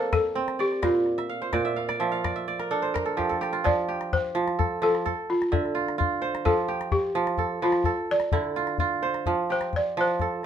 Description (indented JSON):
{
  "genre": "west african traditional, West African string and xylophone music",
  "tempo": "85 BPM (dotted quarters)",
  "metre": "12/8",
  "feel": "straight",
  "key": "F major",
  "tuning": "A4 = 440 Hz",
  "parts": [
    { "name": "kora", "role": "arpeggios", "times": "0.0-10.5 s", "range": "Bb2 to F5", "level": "-26 LUFS", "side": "right 4 dB", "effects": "none" },
    { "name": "calabash", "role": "percussion", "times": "0.0-10.5 s", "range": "none", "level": "-30 LUFS", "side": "left 5 dB", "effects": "none" },
    { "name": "balafon", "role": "melody", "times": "0.1-10.5 s", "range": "F4 to D5", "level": "-26 LUFS", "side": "left 1 dB", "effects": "none" }
  ],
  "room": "moderate studio reverb, RT60 0.6 s",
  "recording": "minimal, uncompressed stereo recording",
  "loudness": "-23 LUFS",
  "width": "side -9 dB against mid",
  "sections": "0.0-3.6 A section; 3.6-10.5 B section",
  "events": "kora fill 1.2-3.6; drum fill 3.2-3.6; balafon solo 3.6-10.5",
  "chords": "0.0 F; 0.8 Bb; 3.6 F; 5.0 Dm; 6.5 F; 7.9 Dm; 9.3 F"
}